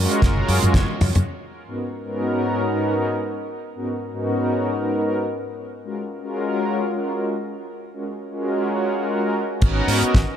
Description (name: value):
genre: nu-disco, nu disco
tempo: 115 BPM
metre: 4/4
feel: swing 55% on 16ths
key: G# dorian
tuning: A4 = 442 Hz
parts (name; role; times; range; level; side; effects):
- warm analog pad; accompaniment; 0.0-10.1 s; G#2 to C#5; -22 LUFS; equal; chorus, tremolo, vintage 12-bit sampler grit, sidechain pumping, diffuse ambient delay
- fingered electric bass with an envelope filter; bass; 0.0-1.2, 9.6-10.2 s; F#1 to G#2; -21 LUFS; equal; none
- damped 70s drum kit; drums; 0.1-1.2, 9.6-10.3 s; crash cymbal, hi-hat, snare drum, toms; -24 LUFS; equal; none
- kick drum; drums; 0.2-0.9, 9.6-10.3 s; none; -18 LUFS; equal; none
room: moderate plate reverb, RT60 1.5 s, studio reverb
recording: dreamy mix soaked in reverb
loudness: -20 LUFS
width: side -9 dB against mid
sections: 0.0-1.3 A section; 1.3-9.6 B section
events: drum fill 0.2-1.3; band accent 0.7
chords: 0.0 F#maj9; 1.3 G#m11; 5.2 F#maj9; 9.6 G#m11